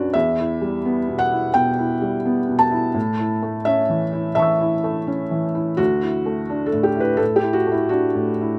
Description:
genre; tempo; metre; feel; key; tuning
neoclassical minimalist piano; 85 BPM; 4/4; rubato; E dorian; A4 = 440 Hz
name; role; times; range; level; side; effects
felt-muted upright piano; solo; 0.0-8.6 s; D2 to E6; -20 LUFS; equal; none
room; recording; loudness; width
little or no reverb; recorded outdoors, with no room sound; -20 LUFS; mono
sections
0.0-8.6 A section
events
none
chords
0.1 Em; 3.0 A; 5.8 Dadd9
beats
| 0.14 0.84 1.55 2.25 | 2.95 3.66 4.37 5.08 | 5.79 6.50 7.20 7.91

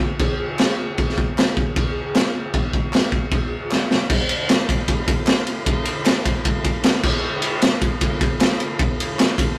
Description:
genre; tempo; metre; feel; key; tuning
rock; 154 BPM; 4/4; straight; none; none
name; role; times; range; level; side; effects
raw garage drum kit; drums; 0.0-9.5 s; crash cymbal, kick drum, ride cymbal, snare drum; -20 LUFS; equal; none
group handclap; percussion; 0.6-9.3 s; none; -36 LUFS; equal; none
room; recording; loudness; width
moderate stone room reverb, RT60 1.2 s; rough rehearsal-room recording, warm saturation; -20 LUFS; mono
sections
0.0-4.1 A section; 4.1-9.6 B section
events
drum fill 3.7-4.1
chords
none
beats
0.19 0.58 | 0.97 1.37 1.76 2.15 | 2.54 2.93 3.32 3.71 | 4.10 4.49 4.88 5.27 | 5.67 6.06 6.45 6.84 | 7.23 7.62 8.02 8.41 | 8.80 9.19

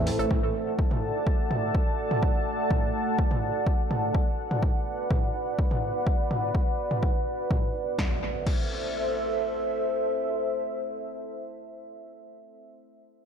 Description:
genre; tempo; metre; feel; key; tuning
melodic techno; 125 BPM; 4/4; straight; A dorian; A4 = 440 Hz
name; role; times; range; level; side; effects
deep dark ambient pad; sustained chords; 0.0-11.9 s; A3 to A5; -29 LUFS; equal; chorus, built-in reverb, sidechain pumping
punchy analog drum machine; drums; 0.1-8.6 s; crash cymbal, hi-hat, snare drum, toms; -33 LUFS; equal; overdrive, sidechain pumping on toms, sidechain pumping on hats, sidechain pumping on cymbals, analog delay
electronic kick drum; drums; 0.3-8.6 s; none; -26 LUFS; equal; overdrive
impact; sound effects; 8.0-12.0 s; none; -40 LUFS; equal; none
room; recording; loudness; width
light reverb, digital ambience; echo-heavy mix; -24 LUFS; side -7 dB against mid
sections
0.0-8.0 A section; 8.0-11.8 B section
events
none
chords
0.3 D/A; 4.1 Bm; 8.0 Am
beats
| 0.31 0.79 1.27 1.75 | 2.23 2.71 3.19 3.67 | 4.15 4.63 5.11 5.59 | 6.07 6.55 7.03 7.51 | 7.99 8.47 8.95 9.43 | 9.91 10.39 10.87 11.35

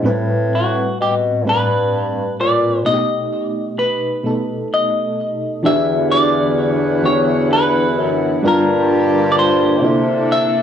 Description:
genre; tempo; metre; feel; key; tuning
R&B; 43 BPM (dotted quarters); 6/8; straight; unclear; A4 = 441 Hz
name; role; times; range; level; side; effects
FM electric piano with tremolo; accompaniment; 0.0-10.6 s; A2 to B4; -19 LUFS; right 1 dB; none
mellow bassoon; bass; 0.1-10.4 s; E2 to C3; -19 LUFS; left 2 dB; transformer saturation
semi-hollow electric guitar; melody; 0.6-10.6 s; F#4 to E5; -18 LUFS; left 1 dB; tape echo
chorused pulse-width pad; sustained chords; 5.6-10.6 s; C3 to F#5; -22 LUFS; left 1 dB; none
room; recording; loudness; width
little or no reverb; dry, gritty hardware recording, cassette tape, small room ambience; -14 LUFS; side -8 dB against mid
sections
0.0-5.6 A section; 5.6-10.6 B section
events
break 2.8-5.6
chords
0.1 Am9; 2.8 B7b13; 5.6 Em9; 8.4 Gm7; 9.8 C13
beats
| 0.05 1.45 | 2.84 4.24 | 5.63 7.03 | 8.42 9.82

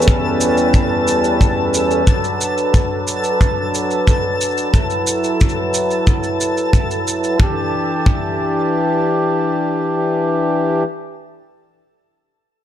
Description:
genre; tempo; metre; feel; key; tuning
folktronica; 90 BPM; 4/4; straight; E dorian; A4 = 441 Hz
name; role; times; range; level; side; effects
hand-pumped harmonium; sustained chords; 0.0-10.8 s; E2 to B4; -17 LUFS; equal; low-pass filter
shaker; drums; 0.0-7.4 s; none; -24 LUFS; right 2 dB; none
twinkling granular texture; texture; 0.0-7.4 s; A4 to A5; -23 LUFS; equal; built-in reverb
kick drum; drums; 0.1-8.3 s; none; -16 LUFS; equal; none
room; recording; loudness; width
light reverb; dark, warm production; -14 LUFS; side -10 dB against mid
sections
0.0-7.4 A section; 7.4-10.1 B section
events
filter sweep on harmonium 0.0-7.4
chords
0.0 A7/E; 2.1 D6; 7.4 Em7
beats
0.07 0.74 1.41 | 2.07 2.74 3.40 4.07 | 4.74 5.41 6.07 6.74 | 7.41 8.07 8.74 9.40

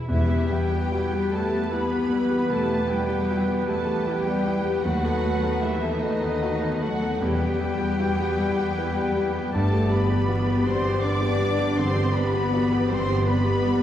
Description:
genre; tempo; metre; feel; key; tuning
classical, romantic movement for piano and orchestra; 48-55 BPM (dotted quarters); 12/8; rubato; E minor; A4 = 440 Hz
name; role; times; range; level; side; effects
clear concert grand piano; melody; 0.0-13.8 s; D#2 to B4; -28 LUFS; left 2 dB; none
clear symphonic viola section; accompaniment; 0.0-13.8 s; G3 to G4; -32 LUFS; right 1 dB; none
warm symphonic violin section; melody; 0.1-13.8 s; D#5 to D6; -34 LUFS; left 2 dB; none
clear oboe; second line; 0.1-13.7 s; B4 to D5; -36 LUFS; right 2 dB; none
concert flute; second line; 0.1-13.8 s; D#5 to D6; -36 LUFS; left 1 dB; none
dark clarinet; second line; 0.1-13.7 s; G4 to A4; -35 LUFS; left 1 dB; none
warm symphonic violin section; second line; 0.1-13.8 s; D#4 to D5; -35 LUFS; left 2 dB; none
mellow bassoon; accompaniment; 0.1-13.7 s; B3; -33 LUFS; right 4 dB; none
dark French horn section; sustained chords; 0.1-13.8 s; D#3 to D4; -29 LUFS; left 3 dB; none
rich symphonic cello section; bass; 0.1-13.8 s; D#3 to D4; -31 LUFS; equal; none
rich symphonic double bass section; bass; 0.1-13.8 s; G1 to E2; -29 LUFS; right 1 dB; none
timpani; percussion; 0.1-8.3 s; E2; -28 LUFS; equal; none
room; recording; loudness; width
wet scoring stage reverb, RT60 1.7 s; heard from further back in the room, vinyl crackle; -21 LUFS; side -11 dB against mid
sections
0.1-13.8 A section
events
none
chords
0.1 Em; 4.8 B7/D#; 7.2 Em; 9.5 G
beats
| 0.10 1.33 2.50 3.68 | 4.85 6.02 7.21 8.39 | 9.54 10.66 11.78 12.90

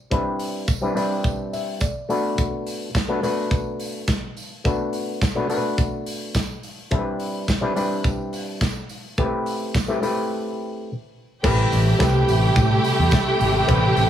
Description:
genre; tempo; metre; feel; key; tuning
disco; 106 BPM; 4/4; straight; A dorian; A4 = 439 Hz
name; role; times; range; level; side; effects
overdriven clav; accompaniment; 0.1-14.1 s; G3 to E5; -24 LUFS; left 2 dB; auto-wah
modern studio drum kit; drums; 0.1-14.1 s; crash cymbal, hi-hat, kick drum, snare drum; -25 LUFS; equal; none
tambourine; percussion; 0.4-14.1 s; none; -40 LUFS; right 10 dB; none
warm studio string section; second line; 11.4-14.1 s; G4 to G5; -22 LUFS; right 2 dB; none
rich studio string section; sustained chords; 11.4-14.1 s; C3 to E4; -24 LUFS; right 2 dB; none
modern bright fingered electric bass; bass; 11.4-14.1 s; G#1 to A2; -19 LUFS; equal; none
room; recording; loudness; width
light reverb, small room ambience; none; -20 LUFS; side -10 dB against mid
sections
0.0-11.4 A section; 11.4-14.1 B section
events
clav fill 1.2-2.4; break 10.3-11.4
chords
0.0 Cmaj9; 2.1 Bm7; 6.9 Cmaj9; 9.2 Am9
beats
| 0.12 0.68 1.25 1.81 | 2.38 2.95 3.52 4.08 | 4.65 5.22 5.78 6.35 | 6.92 7.48 8.05 8.61 | 9.18 9.74 10.31 10.87 | 11.44 12.00 12.56 13.12 | 13.68

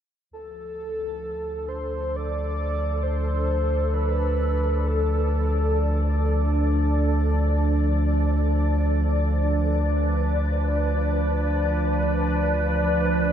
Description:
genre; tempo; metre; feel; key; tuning
ambient; free time; none; none; D dorian; A4 = 439 Hz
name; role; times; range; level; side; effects
breathy flute-like synth lead; melody; 0.3-6.7 s; A4 to D5; -30 LUFS; equal; analog chorus
evolving wavetable pad; sustained chords; 1.1-13.3 s; F3 to D5; -26 LUFS; right 1 dB; ensemble chorus, built-in reverb
warm sub bass; bass; 0.3-13.3 s; D2; -23 LUFS; equal; none
room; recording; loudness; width
moderate cathedral reverb, RT60 6.2 s; in a vast, echoing space; -21 LUFS; side -9 dB against mid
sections
0.3-13.3 A section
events
fade-in on ambient pad 0.3-13.3; fade-in on soft synth lead 0.3-13.3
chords
0.3 Dm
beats
free time

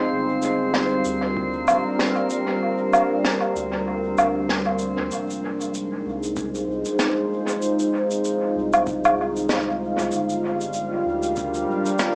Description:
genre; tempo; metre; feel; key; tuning
ambient dub; 96 BPM; 4/4; swing 58% on 16ths; F dorian; A4 = 437 Hz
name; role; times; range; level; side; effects
deep dark ambient pad; sustained chords; 0.0-12.2 s; G3 to F5; -26 LUFS; equal; chorus, built-in reverb, vintage 12-bit sampler grit, cassette tape
soft dub sub bass; bass; 0.0-11.8 s; D1 to D2; -37 LUFS; equal; none
drifting glass-harmonics texture; texture; 0.0-5.1 s; C4 to C5; -29 LUFS; equal; chorus, built-in reverb, cassette tape
shaker, snare drum and woodblock; drums; 0.4-12.1 s; none; -26 LUFS; equal; cassette tape, dub echo
electronic kick drum; drums; 1.4-1.5, 6.4-11.5 s; none; -39 LUFS; equal; cassette tape
room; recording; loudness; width
wet studio reverb, RT60 0.6 s; home recording on cassette, small speaker sound; -23 LUFS; mono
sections
0.0-5.1 A section; 5.1-12.2 B section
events
kick drops out 3.9-5.1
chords
0.1 Gm7; 5.1 Fm7; 10.1 Gm7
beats
| 0.12 0.74 1.37 1.99 | 2.62 3.24 3.87 4.49 | 5.12 5.74 6.37 6.99 | 7.62 8.24 8.87 9.49 | 10.12 10.74 11.37 11.99

